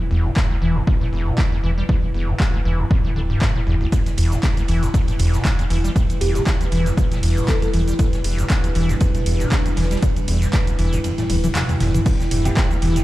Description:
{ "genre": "acid house", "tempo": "118 BPM", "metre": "4/4", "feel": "swing 55% on 16ths", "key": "E minor", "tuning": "A4 = 442 Hz", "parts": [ { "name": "warbly tape-like pad", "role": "texture", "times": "0.0-13.0 s", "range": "E4 to G5", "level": "-30 LUFS", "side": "right 1 dB", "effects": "chorus, built-in reverb, sidechain pumping" }, { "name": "acid bass, square", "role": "riff", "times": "0.1-13.0 s", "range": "D2 to G3", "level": "-24 LUFS", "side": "equal", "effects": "overdrive, lush chorus, digital delay" }, { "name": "round analog bass", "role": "bass", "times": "0.1-13.0 s", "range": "D1 to E1", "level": "-20 LUFS", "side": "equal", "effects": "tube saturation, sidechain pumping" }, { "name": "electronic kick drum", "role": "drums", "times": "0.4-12.7 s", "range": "none", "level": "-19 LUFS", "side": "equal", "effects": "overdrive" }, { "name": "punchy analog drum machine", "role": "drums", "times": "0.4-13.0 s", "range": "cabasa, crash cymbal, handclaps, hi-hat, toms", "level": "-27 LUFS", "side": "equal", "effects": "overdrive" }, { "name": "dark analog pad", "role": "sustained chords", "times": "5.1-13.0 s", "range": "G3 to B4", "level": "-29 LUFS", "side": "right 2 dB", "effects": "chorus, phaser, sidechain pumping" }, { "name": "crisp fusion drum kit", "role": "drums", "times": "3.9-13.0 s", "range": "hi-hat, ride cymbal, snare drum", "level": "-37 LUFS", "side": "right 1 dB", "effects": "sidechain pumping on cymbals, high-pass filter on cymbals, sidechain pumping on hats, high-pass filter on hats, high-pass filter on snare, high-pass filter on room" }, { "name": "bell-like FM electric piano", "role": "melody", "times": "6.2-7.7 s", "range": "G4 to A4", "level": "-28 LUFS", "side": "right 1 dB", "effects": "chorus, digital delay" }, { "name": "clear baby grand piano", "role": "stabs", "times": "12.5-12.6 s", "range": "B3 to G4", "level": "-30 LUFS", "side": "right 2 dB", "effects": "digital delay" } ], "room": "little or no reverb", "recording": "played on a big sound system in a bare room, large studio reverb", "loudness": "-17 LUFS", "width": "side -16 dB against mid", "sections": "0.0-12.1 A section", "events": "kick drops out 11.0-12.1; drum fill 11.0-12.1", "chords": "0.0 Em", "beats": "0.36 0.87 1.38 | 1.89 2.40 2.91 3.42 | 3.92 4.43 4.94 5.45 | 5.96 6.47 6.97 7.48 | 7.99 8.50 9.01 9.52 | 10.03 10.53 11.04 11.55 | 12.06 12.57" }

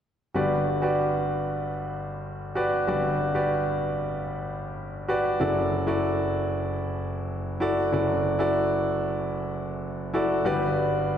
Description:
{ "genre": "pop", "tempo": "95 BPM", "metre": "4/4", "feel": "straight", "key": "unclear", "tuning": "A4 = 440 Hz", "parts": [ { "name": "warm concert grand piano", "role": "accompaniment", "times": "0.3-11.2 s", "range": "F#1 to D5", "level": "-24 LUFS", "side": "equal", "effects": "none" } ], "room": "wet scoring stage reverb, RT60 1.8 s", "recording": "none", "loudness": "-24 LUFS", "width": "side -9 dB against mid", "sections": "0.3-10.5 A section", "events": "none", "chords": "0.3 Gmaj7; 5.4 Dadd9/F#; 10.5 Gmaj7", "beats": "| 0.35 0.98 1.61 2.24 | 2.88 3.51 4.14 4.77 | 5.40 6.03 6.67 7.30 | 7.93 8.56 9.19 9.82 | 10.45 11.09" }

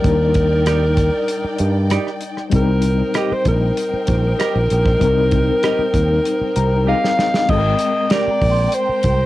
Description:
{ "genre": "lush 1970s-style soul", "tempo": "97 BPM", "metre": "4/4", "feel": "straight", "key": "unclear", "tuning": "A4 = 440 Hz", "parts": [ { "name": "warm alto saxophone", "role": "melody", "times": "0.0-9.3 s", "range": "G4 to F5", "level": "-19 LUFS", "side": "equal", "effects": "cassette tape" }, { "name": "warm symphonic string section", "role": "second line", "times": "0.0-9.3 s", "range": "Eb4 to G5", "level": "-28 LUFS", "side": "equal", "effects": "cassette tape" }, { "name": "tine electric piano", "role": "accompaniment", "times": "0.0-9.3 s", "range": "G3 to Bb5", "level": "-23 LUFS", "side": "left 7 dB", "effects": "fast tremolo, cassette tape" }, { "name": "fingered electric bass", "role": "bass", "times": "0.0-9.3 s", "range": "Ab1 to G2", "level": "-18 LUFS", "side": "equal", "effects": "tube saturation" }, { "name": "damped 70s drum kit", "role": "drums", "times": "0.0-9.2 s", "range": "crash cymbal, hi-hat, kick drum, rim click, snare drum", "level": "-21 LUFS", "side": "equal", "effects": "none" }, { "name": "semi-hollow electric guitar", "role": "riff", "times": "0.7-8.3 s", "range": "C4 to Eb5", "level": "-24 LUFS", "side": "right 8 dB", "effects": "cassette tape" }, { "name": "celesta", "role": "texture", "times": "8.1-9.3 s", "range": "G5 to C6", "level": "-31 LUFS", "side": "right 11 dB", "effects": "cassette tape" } ], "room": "light reverb", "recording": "home recording on cassette", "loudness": "-14 LUFS", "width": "side -16 dB against mid", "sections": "0.0-7.5 A section; 7.5-9.3 B section", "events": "tine electric piano fill 6.3-7.5; drum fill 6.9-7.5", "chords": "0.0 Ebmaj7; 2.5 Cm7; 7.5 Abmaj9", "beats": "| 0.05 0.67 1.29 1.91 | 2.53 3.15 3.77 4.39 | 5.01 5.63 6.25 6.87 | 7.49 8.11 8.73" }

